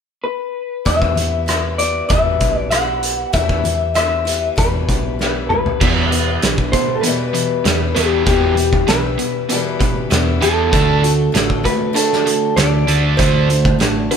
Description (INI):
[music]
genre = folk rock and heartland rock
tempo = 98 BPM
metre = 4/4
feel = straight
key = unclear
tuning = A4 = 439 Hz
[part]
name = electric slide guitar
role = melody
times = 0.2-14.2 s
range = G4 to F#5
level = -19 LUFS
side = left 1 dB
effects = none
[part]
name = picked acoustic archtop guitar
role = accompaniment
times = 0.9-14.2 s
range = E2 to F#4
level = -24 LUFS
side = left 6 dB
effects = none
[part]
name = hollow-body short-scale picked electric bass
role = bass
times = 0.9-14.1 s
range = A1 to E2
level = -20 LUFS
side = right 1 dB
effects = none
[part]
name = loose indie drum kit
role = drums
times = 0.9-14.2 s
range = crash cymbal, hi-hat, kick drum, rim click, snare drum, toms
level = -19 LUFS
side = right 1 dB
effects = none
[part]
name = overdriven electric guitar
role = riff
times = 5.8-14.2 s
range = E2 to D4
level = -21 LUFS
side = right 2 dB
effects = none
[sound]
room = light reverb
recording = band playing live in one room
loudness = -14 LUFS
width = side -7 dB against mid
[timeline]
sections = 0.9-5.8 A section; 5.8-14.2 B section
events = drum fill 5.2-5.8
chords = 0.0 N.C.; 0.9 Em; 10.7 D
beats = 0.24 | 0.86 1.48 2.10 2.72 | 3.34 3.96 4.58 5.19 | 5.81 6.43 7.04 7.66 | 8.27 8.89 9.50 10.12 | 10.73 11.35 11.96 12.58 | 13.19 13.81